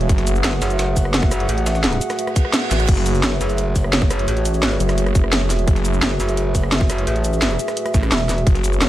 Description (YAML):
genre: dark technical drum and bass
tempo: 172 BPM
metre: 4/4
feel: straight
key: F# minor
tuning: A4 = 440 Hz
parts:
  - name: dark analog pad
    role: sustained chords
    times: 0.0-8.9 s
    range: A3 to F#5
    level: -25 LUFS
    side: right 1 dB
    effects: chorus, sidechain pumping
  - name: phased detuned saw bass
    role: bass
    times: 0.0-0.4, 2.7-8.8 s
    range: F#1 to A1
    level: -19 LUFS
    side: equal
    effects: phaser
  - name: drum and bass drum kit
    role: drums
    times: 0.0-8.9 s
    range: cabasa, crash cymbal, hi-hat, rim click, snare drum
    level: -22 LUFS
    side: equal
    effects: studio ambience
  - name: warbly tape-like pad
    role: texture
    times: 0.0-8.9 s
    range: F#4 to E5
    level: -27 LUFS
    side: equal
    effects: chorus, built-in reverb, sidechain pumping
  - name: breakbeat sampler-style drum kit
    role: drums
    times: 0.1-8.9 s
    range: hi-hat, snare drum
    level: -31 LUFS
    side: equal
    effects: none
  - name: electronic kick drum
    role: drums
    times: 0.1-8.5 s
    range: none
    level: -16 LUFS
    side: equal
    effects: studio ambience
  - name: metallic wobble bass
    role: bass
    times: 0.4-8.9 s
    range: E1 to A1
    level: -21 LUFS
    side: equal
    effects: chorus
  - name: reverse cymbal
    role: sound effects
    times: 2.3-2.9 s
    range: none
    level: -29 LUFS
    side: right 7 dB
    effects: none
room: digital ambience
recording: lossy compression artefacts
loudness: -16 LUFS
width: side -14 dB against mid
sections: 0.0-8.9 A section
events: reverse cymbal 2.3-2.9; kick drops out 2.5-2.9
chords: 0.0 F#madd9